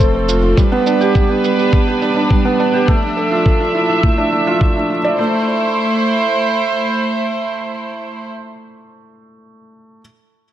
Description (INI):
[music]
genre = piano and strings electronica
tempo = 104 BPM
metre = 4/4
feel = straight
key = A minor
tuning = A4 = 444 Hz
[part]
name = warm studio string section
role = sustained chords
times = 0.0-8.3 s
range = F3 to E5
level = -18 LUFS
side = right 2 dB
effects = sidechain pumping, low-pass filter
[part]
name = felt-muted upright piano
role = riff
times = 0.0-10.0 s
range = G3 to D5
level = -17 LUFS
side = right 1 dB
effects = digital delay
[part]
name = warm sub bass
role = bass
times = 0.0-0.5 s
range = F1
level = -18 LUFS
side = equal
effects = sidechain pumping
[part]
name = electronic kick drum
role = drums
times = 0.0-4.7 s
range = none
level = -14 LUFS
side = equal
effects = none
[part]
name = shaker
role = drums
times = 0.0-5.0 s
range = none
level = -29 LUFS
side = right 6 dB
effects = low-pass filter on cymbals, low-pass filter on perc, low-pass filter on room
[sound]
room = moderate lush hall reverb, RT60 1.8 s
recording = none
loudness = -13 LUFS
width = side -11 dB against mid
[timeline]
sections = 0.0-5.2 A section; 5.2-7.5 B section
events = filter sweep on drum 0.0-5.2; filter sweep on string section 0.0-5.2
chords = 0.0 F; 0.6 G; 2.9 Dmadd9; 5.2 Am